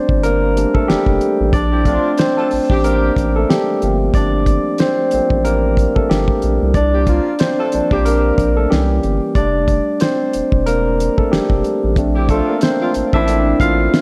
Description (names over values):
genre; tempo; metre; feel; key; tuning
R&B, neo-soul; 92 BPM; 4/4; swing 57% on 16ths; unclear; A4 = 440 Hz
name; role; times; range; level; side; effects
barky tine electric piano; accompaniment; 0.0-14.0 s; E3 to F5; -18 LUFS; equal; overdrive
round analog bass; bass; 0.1-13.9 s; E1 to C2; -21 LUFS; equal; none
damped 70s drum kit; drums; 0.1-14.0 s; hi-hat, kick drum, snare drum; -20 LUFS; equal; none
warm horn section; stabs; 1.7-13.6 s; D3 to A4; -26 LUFS; equal; tape echo
room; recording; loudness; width
moderate lush hall reverb, RT60 1.7 s, small room ambience; dreamy mix soaked in reverb; -16 LUFS; mono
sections
0.0-14.0 A section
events
tine electric piano solo 0.0-14.0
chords
0.0 F69; 1.5 Bbmaj9; 3.8 Gm11; 6.7 C7sus4; 8.7 C7b9; 9.4 F69; 12.0 Bbmaj9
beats
0.23 0.88 | 1.53 2.18 2.83 3.49 | 4.14 4.79 5.44 6.09 | 6.75 7.40 8.05 8.70 | 9.36 10.01 10.66 11.31 | 11.96 12.62 13.27 13.92